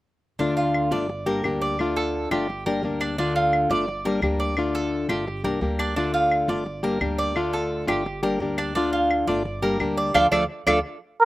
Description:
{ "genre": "latin, Cuban son and guajira", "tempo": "172 BPM", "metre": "4/4", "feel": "straight", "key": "D minor", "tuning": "A4 = 440 Hz", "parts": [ { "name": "flamenco guitar", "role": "accompaniment", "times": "0.4-10.8 s", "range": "D3 to G4", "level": "-24 LUFS", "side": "left 2 dB", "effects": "slapback echo" }, { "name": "Cuban tres", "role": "arpeggios", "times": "0.4-10.8 s", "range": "D4 to D5", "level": "-25 LUFS", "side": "right 2 dB", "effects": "none" }, { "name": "upright bass", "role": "bass", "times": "0.4-10.8 s", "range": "G1 to D2", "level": "-32 LUFS", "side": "equal", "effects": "none" }, { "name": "claves", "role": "percussion", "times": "0.7-10.8 s", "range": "none", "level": "-28 LUFS", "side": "left 3 dB", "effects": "none" }, { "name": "trumpet with cup mute", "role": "melody", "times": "11.2 s", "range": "Bb4", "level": "-12 LUFS", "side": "right 2 dB", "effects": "none" } ], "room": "little or no reverb", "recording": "recorded outdoors, with no room sound", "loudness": "-21 LUFS", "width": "side -17 dB against mid", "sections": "0.4-11.2 A section", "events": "band accent 10.2-11.2", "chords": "0.4 Dm; 1.1 Gm; 1.8 Dm; 2.5 Gm; 3.2 Dm; 3.9 Gm; 4.6 Dm; 5.3 Gm; 6.0 Dm; 6.7 Gm; 7.4 Dm; 8.1 Gm; 8.8 Dm; 9.5 Gm; 10.2 Dm", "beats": "| 0.40 0.75 1.09 1.44 | 1.79 2.14 2.49 2.83 | 3.18 3.53 3.88 4.23 | 4.58 4.92 5.27 5.62 | 5.97 6.32 6.67 7.01 | 7.36 7.71 8.06 8.41 | 8.76 9.11 9.45 9.80 | 10.15 10.50 10.85 11.20" }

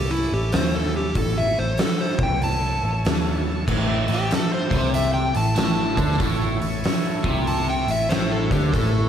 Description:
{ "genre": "blues rock power trio and southern rock", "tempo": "95 BPM", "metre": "4/4", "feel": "swing 64% on 8ths", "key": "A major", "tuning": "A4 = 441 Hz", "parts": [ { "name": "overdriven slide guitar", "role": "melody", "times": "0.0-9.1 s", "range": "E4 to A5", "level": "-26 LUFS", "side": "equal", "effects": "none" }, { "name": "overdriven tonewheel organ", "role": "sustained chords", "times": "0.0-9.1 s", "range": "A3 to E5", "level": "-33 LUFS", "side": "right 2 dB", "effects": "slow rotary speaker" }, { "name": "vintage muted picked electric bass", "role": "bass", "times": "0.0-9.1 s", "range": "A1 to D#2", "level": "-26 LUFS", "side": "equal", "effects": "none" }, { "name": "oversized low-tuned drum kit", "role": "drums", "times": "0.5-8.9 s", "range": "crash cymbal, hi-hat, kick drum, snare drum", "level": "-24 LUFS", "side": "equal", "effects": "none" }, { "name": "overdriven semi-hollow guitar", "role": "riff", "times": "3.7-9.1 s", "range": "A2 to D3", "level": "-24 LUFS", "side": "equal", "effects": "phaser, slapback echo" } ], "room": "moderate lush hall reverb, RT60 1.6 s, studio ambience", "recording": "big arena sound", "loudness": "-19 LUFS", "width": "side -9 dB against mid", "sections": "0.0-3.7 A section; 3.7-9.1 B section", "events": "electric slide guitar solo 0.0-3.7", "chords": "0.0 A", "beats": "0.53 | 1.16 1.79 2.42 3.05 | 3.68 4.31 4.94 5.58 | 6.21 6.84 7.47 8.10 | 8.73" }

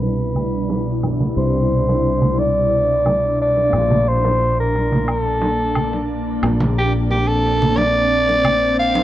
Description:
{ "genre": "sunset chillout", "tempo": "89 BPM", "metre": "4/4", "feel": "straight", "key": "unclear", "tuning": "A4 = 439 Hz", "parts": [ { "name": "growling soprano saxophone", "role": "melody", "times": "0.0-9.0 s", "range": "G4 to F5", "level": "-19 LUFS", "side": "equal", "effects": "tape echo" }, { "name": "nylon-string guitar", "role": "accompaniment", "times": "0.0-9.0 s", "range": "B2 to F4", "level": "-37 LUFS", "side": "left 1 dB", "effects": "none" }, { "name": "ethereal airy pad", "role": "sustained chords", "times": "0.0-9.0 s", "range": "B2 to E4", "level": "-22 LUFS", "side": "right 1 dB", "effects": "ensemble chorus, built-in reverb" }, { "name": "sustaining fretless electric bass", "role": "bass", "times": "0.0-9.0 s", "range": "Bb1 to C2", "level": "-22 LUFS", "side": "equal", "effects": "ensemble chorus" }, { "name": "bongos and congas", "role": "percussion", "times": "0.0-9.0 s", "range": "none", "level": "-23 LUFS", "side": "right 1 dB", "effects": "none" }, { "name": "woodblock", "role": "drums", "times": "0.4-8.6 s", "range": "none", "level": "-26 LUFS", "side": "right 1 dB", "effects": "none" }, { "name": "swell", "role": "sound effects", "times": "8.4-9.0 s", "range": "none", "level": "-25 LUFS", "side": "left 2 dB", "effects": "none" } ], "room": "light reverb", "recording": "dry, gritty hardware recording, cassette tape, low-pass filter", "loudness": "-15 LUFS", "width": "side -13 dB against mid", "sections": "0.0-9.0 A section", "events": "filter sweep 0.0-9.0; swell 8.4-9.0", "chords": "0.0 Cmaj9; 3.7 Bbmaj7", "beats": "0.02 0.70 | 1.37 2.05 2.72 3.39 | 4.07 4.74 5.42 6.09 | 6.76 7.44 8.11 8.79" }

